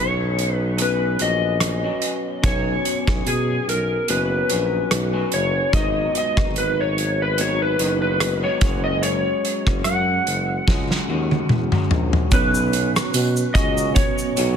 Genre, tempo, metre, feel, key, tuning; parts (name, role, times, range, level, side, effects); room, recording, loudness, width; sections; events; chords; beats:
indie pop, bedroom pop; 73 BPM; 4/4; swing 55% on 16ths; B major; A4 = 440 Hz
electric slide guitar; melody; 0.0-14.6 s; G#4 to F#5; -23 LUFS; left 1 dB; lush chorus, digital delay
electric guitar through a small old amp; accompaniment; 0.0-14.6 s; G#2 to F#4; -27 LUFS; left 2 dB; analog chorus, warbly pitch drift
warm tuba; bass; 0.0-14.6 s; F#1 to B2; -24 LUFS; equal
loose indie drum kit; drums; 0.4-14.6 s; hi-hat, kick drum, rim click, shaker, snare drum, toms; -22 LUFS; equal; soft clipping on snare
reed electric piano; accompaniment; 12.3-14.6 s; B3 to C#5; -26 LUFS; right 9 dB; fast tremolo
tambourine; percussion; 13.1-13.4 s; -31 LUFS; right 9 dB
light reverb, small room ambience; dense, heavily limited modern master; -18 LUFS; side -8 dB against mid
0.0-12.3 A section; 12.3-14.6 B section
drum fill 10.7-12.3
0.0 Bsus2; 5.7 G#m7; 8.6 F#sus2; 12.3 Bsus2
0.79 1.62 | 2.44 3.26 4.09 4.91 | 5.73 6.56 7.38 8.20 | 9.03 9.85 10.67 11.50 | 12.32 13.14 13.96